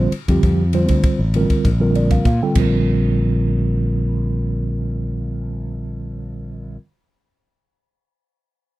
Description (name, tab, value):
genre	electric jazz fusion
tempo	98 BPM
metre	4/4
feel	straight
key	Bb major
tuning	A4 = 440 Hz
part	mellow tine electric piano	accompaniment	0.0-6.8 s	D3 to G5	-21 LUFS	right 2 dB	fast stereo tremolo
part	fretless electric bass	bass	0.0-6.8 s	A1 to Bb2	-19 LUFS	equal	none
part	crisp fusion drum kit	drums	0.1-2.7 s	crash cymbal, kick drum, ride cymbal	-21 LUFS	equal	none
room	little or no reverb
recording	dry, close 1970s-style studio recording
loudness	-16 LUFS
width	side -17 dB against mid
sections	0.0-2.9 A section; 2.9-5.3 B section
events	tine electric piano fill 1.6-2.9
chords	0.0 Bbmaj9; 2.6 Bbadd9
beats	| 0.42 1.03 1.64 2.25 | 2.86 3.47 4.08 4.69